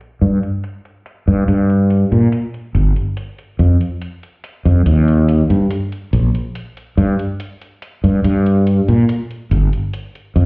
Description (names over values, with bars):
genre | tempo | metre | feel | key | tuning
vaporwave | 71 BPM | 4/4 | straight | unclear | A4 = 442 Hz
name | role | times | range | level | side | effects
electronic hi-hat | drums | 0.0-10.5 s | none | -38 LUFS | equal | none
fretless electric bass | bass | 0.2-10.5 s | G1 to Bb2 | -11 LUFS | equal | none
room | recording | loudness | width
little or no reverb | heard muffled through a wall, stone room reverb, cassette tape, EQ, low-pass filter | -13 LUFS | side -31 dB against mid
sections
0.0-10.5 A section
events
filter sweep 0.0-10.5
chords
none